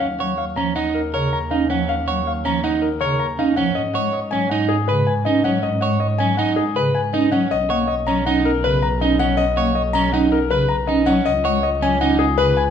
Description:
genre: classical, minimalist pattern music.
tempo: 160 BPM.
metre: 5/4.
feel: straight.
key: B lydian.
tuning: A4 = 440 Hz.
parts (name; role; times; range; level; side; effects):
warm concert grand piano; melody; 0.0-12.7 s; G#4 to A#5; -22 LUFS; left 8 dB; none.
electric guitar at the edge of break-up; arpeggios; 0.0-12.6 s; C#4 to C#5; -22 LUFS; right 5 dB; none.
rich studio double bass section; bass; 0.0-12.7 s; B1 to G#2; -25 LUFS; right 1 dB; none.
pipe organ, stopped flute; accompaniment; 0.2-12.5 s; C#3 to C#4; -23 LUFS; right 1 dB; none.
room: wet recital hall reverb, RT60 1.4 s.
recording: none.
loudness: -17 LUFS.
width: side -8 dB against mid.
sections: 0.0-12.7 A section.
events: none.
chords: 0.0 D#m7; 3.8 G#m7; 7.5 Bmaj7; 11.3 C#7sus4.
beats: | 0.01 0.38 0.76 1.13 1.51 | 1.88 2.26 2.63 3.01 3.38 | 3.76 4.13 4.51 4.88 5.26 | 5.63 6.01 6.38 6.76 7.13 | 7.51 7.88 8.26 8.63 9.01 | 9.38 9.76 10.13 10.51 10.88 | 11.26 11.63 12.01 12.38.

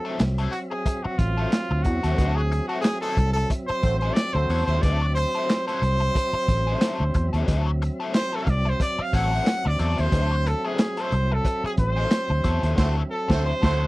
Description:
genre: funk.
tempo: 91 BPM.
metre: 4/4.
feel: swing 56% on 16ths.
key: D mixolydian.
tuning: A4 = 440 Hz.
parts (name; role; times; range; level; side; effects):
brilliant trumpet; melody; 0.0-13.9 s; F4 to F#5; -26 LUFS; equal; none.
overdriven electric guitar; accompaniment; 0.0-13.8 s; F#3 to A4; -31 LUFS; left 4 dB; wah.
tonewheel organ; sustained chords; 0.0-13.9 s; F#3 to E5; -34 LUFS; right 1 dB; slow rotary speaker, overdrive.
vintage muted fingered electric bass; bass; 0.2-13.8 s; A1 to E2; -23 LUFS; equal; none.
crunchy breakbeat drum kit; drums; 0.2-13.8 s; crash cymbal, handclaps, hi-hat, kick drum, snare drum; -23 LUFS; equal; none.
warm horn section; second line; 3.8-4.8, 12.8-13.8 s; A3 to C5; -30 LUFS; right 3 dB; none.
room: little or no reverb.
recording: dry, close 1970s-style studio recording.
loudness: -21 LUFS.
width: side -20 dB against mid.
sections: 0.0-13.9 A section.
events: trumpet solo 0.0-13.9; band accent 2.2-4.8, 12.8-13.9.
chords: 0.0 D9.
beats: 0.20 0.86 1.53 | 2.19 2.85 3.51 4.17 | 4.83 5.49 6.15 6.82 | 7.48 8.14 8.80 9.46 | 10.13 10.79 11.45 12.12 | 12.78 13.44.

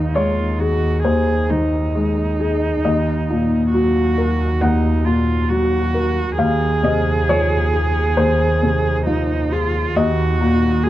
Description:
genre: neoclassical piano and strings.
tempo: 67 BPM.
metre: 4/4.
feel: rubato.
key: Eb dorian.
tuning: A4 = 440 Hz.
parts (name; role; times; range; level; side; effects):
rich cello; second line; 0.0-10.9 s; Eb4 to Ab4; -22 LUFS; right 4 dB; none.
felt-muted upright piano; accompaniment; 0.0-10.9 s; Eb2 to Gb5; -18 LUFS; left 2 dB; none.
rich double bass; bass; 0.0-10.9 s; Eb2; -21 LUFS; equal; none.
room: light reverb.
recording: worn, warbling old tape, cassette tape, warbly pitch drift.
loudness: -15 LUFS.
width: side -14 dB against mid.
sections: 0.0-10.9 A section.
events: none.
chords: 0.0 Ab/Eb; 2.9 Ebm; 6.4 Fm/Eb; 10.0 Ebm.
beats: 0.16 1.05 1.96 | 2.85 3.74 4.62 5.51 | 6.39 7.29 8.18 9.07 | 9.97 10.87.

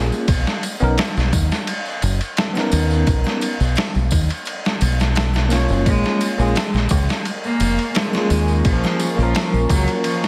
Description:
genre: trip hop.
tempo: 86 BPM.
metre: 4/4.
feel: straight.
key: unclear.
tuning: A4 = 440 Hz.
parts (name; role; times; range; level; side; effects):
bell-like tine electric piano; accompaniment; 0.0-10.3 s; Bb3 to C#5; -26 LUFS; equal; harmonic tremolo, tape echo.
deep dub fingered electric bass; bass; 0.0-9.9 s; F1 to D#2; -21 LUFS; equal; none.
tambourine and triangle; percussion; 0.1-10.3 s; none; -36 LUFS; equal; none.
trip hop sampler-style drum kit; drums; 0.3-10.3 s; hi-hat, kick drum, ride cymbal, snare drum; -24 LUFS; equal; overdrive.
rich cello; melody; 5.9-10.3 s; F3 to Bb3; -25 LUFS; equal; tape echo.
deep dark ambient pad; sustained chords; 7.3-10.3 s; Bb4 to Db6; -32 LUFS; equal; chorus, built-in reverb.
room: digital ambience.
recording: heavily compressed radio sound, multiband compression.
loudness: -19 LUFS.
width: mono.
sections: 0.0-10.3 A section.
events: none.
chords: 0.3 Bmaj9; 5.9 Bbm7.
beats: | 0.28 0.98 1.68 2.37 | 3.07 3.77 4.47 5.16 | 5.86 6.56 7.26 7.96 | 8.65 9.35 10.05.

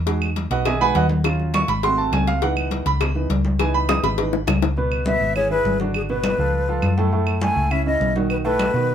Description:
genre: Afro-Cuban jazz.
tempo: 204 BPM.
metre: 4/4.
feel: straight.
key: C# minor.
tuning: A4 = 440 Hz.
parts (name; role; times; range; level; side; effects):
hollow-body short-scale fingered electric bass; bass; 0.0-8.9 s; G#1 to B2; -23 LUFS; equal; none.
warm grand piano; accompaniment; 0.1-8.9 s; A2 to D#6; -23 LUFS; right 4 dB; none.
congas; percussion; 0.1-8.9 s; none; -27 LUFS; left 2 dB; none.
cowbell and bongos; percussion; 0.1-4.8 s; none; -26 LUFS; left 6 dB; none.
claves; percussion; 0.2-8.7 s; none; -30 LUFS; right 6 dB; none.
breathy mellow silver concert flute; melody; 5.1-8.9 s; G#4 to G#5; -22 LUFS; left 2 dB; none.
room: moderate club reverb, RT60 0.6 s.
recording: minimal, uncompressed stereo recording.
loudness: -18 LUFS.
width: side -9 dB against mid.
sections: 0.0-4.8 A section; 4.8-8.9 B section.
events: grand piano solo 0.0-4.8; drum fill 3.9-4.8.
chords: 0.1 Emaj9; 1.2 D#m7; 1.8 G#7b9; 2.4 C#m9; 4.8 C#m7; 5.9 G#m7b5; 6.5 C#aug7; 7.1 F#m9; 8.3 B7.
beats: | 0.07 0.36 0.66 0.95 | 1.25 1.54 1.83 2.13 | 2.42 2.71 3.01 3.30 | 3.60 3.89 4.18 4.48 | 4.77 5.07 5.36 5.65 | 5.95 6.24 6.54 6.83 | 7.12 7.42 7.71 8.01 | 8.30 8.59 8.89.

